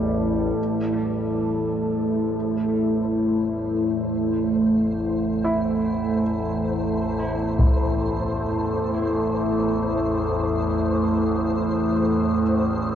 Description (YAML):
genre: dark ambient drone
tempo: free time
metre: none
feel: none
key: A minor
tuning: A4 = 440 Hz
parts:
  - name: deep dark ambient pad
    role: sustained chords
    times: 0.0-12.9 s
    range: A3 to A4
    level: -22 LUFS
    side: equal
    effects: chorus, built-in reverb
  - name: dark grand piano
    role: arpeggios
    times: 0.0-12.9 s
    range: G3 to E4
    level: -34 LUFS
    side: right 1 dB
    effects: tape echo
  - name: overtone-sweeping drone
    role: drone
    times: 0.0-12.9 s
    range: A1 to E2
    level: -30 LUFS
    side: left 1 dB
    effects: chorus, built-in reverb
  - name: flickering grainy texture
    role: texture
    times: 1.6-12.9 s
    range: C5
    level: -35 LUFS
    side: equal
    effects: built-in reverb, ensemble chorus
  - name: solo taiko drums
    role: percussion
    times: 7.6-7.8 s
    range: none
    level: -22 LUFS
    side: equal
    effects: low-pass filter on perc
room: wet huge ambient reverb, RT60 8.6 s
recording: dreamy mix soaked in reverb, nothing above 7.7 kHz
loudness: -20 LUFS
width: side -9 dB against mid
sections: 0.6-12.9 A section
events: fade-in on synth drone 0.6-12.9; fade-in on synth texture 0.6-12.9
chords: 0.0 A5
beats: free time